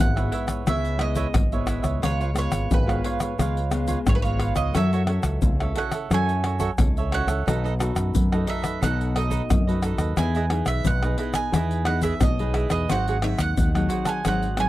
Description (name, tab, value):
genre	samba and choro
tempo	88 BPM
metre	4/4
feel	straight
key	C# minor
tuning	A4 = 440 Hz
part	bowl-back mandolin	second line	0.0-14.7 s	B4 to A5	-30 LUFS	right 5 dB	none
part	cavaquinho	accompaniment	0.0-14.7 s	D#4 to F#5	-30 LUFS	right 6 dB	none
part	nylon-string guitar	accompaniment	0.0-14.7 s	F#2 to A4	-29 LUFS	left 4 dB	none
part	fingered electric bass with an envelope filter	bass	0.0-14.7 s	G#1 to F#2	-25 LUFS	equal	none
part	tube shaker, pandeiro, tamborim and surdo	percussion	0.2-14.7 s	none	-25 LUFS	left 1 dB	none
room	light reverb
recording	dry, close 1970s-style studio recording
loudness	-21 LUFS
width	side -15 dB against mid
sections	0.0-14.7 A section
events	mandolin solo 0.0-14.7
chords	0.0 C#m7; 2.0 C#7; 4.7 F#m7; 7.5 B7; 10.2 Emaj7; 12.9 G#7